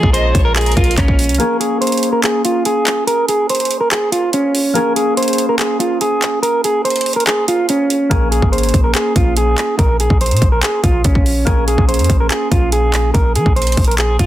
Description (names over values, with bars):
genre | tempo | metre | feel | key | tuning
hip hop, trap | 143 BPM | 4/4 | half-time | Bb minor | A4 = 442 Hz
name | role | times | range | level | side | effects
electric guitar at the edge of break-up | melody | 0.0-14.3 s | Db4 to C5 | -16 LUFS | right 1 dB | spring reverb, low-pass filter, digital delay
concert harp | accompaniment | 0.0-14.3 s | Bb3 to Ab4 | -22 LUFS | left 1 dB | low-pass filter
dark woodwind section | sustained chords | 0.0-1.4 s | Db3 to F4 | -27 LUFS | right 1 dB | none
clean 808-style bass | bass | 0.0-1.4, 8.1-14.3 s | Ab1 to F3 | -16 LUFS | equal | none
trap drum kit | drums | 0.0-14.3 s | handclaps, hi-hat, kick drum | -16 LUFS | equal | none
warm studio violin section | second line | 0.1-1.0 s | Bb4 to Eb5 | -25 LUFS | left 1 dB | digital delay
room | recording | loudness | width
studio reverb | dense, heavily limited modern master | -12 LUFS | side -13 dB against mid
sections
0.0-1.4 A section; 1.4-14.3 B section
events
break 1.4-8.1; filter sweep 1.4-14.3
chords
0.0 Bbm7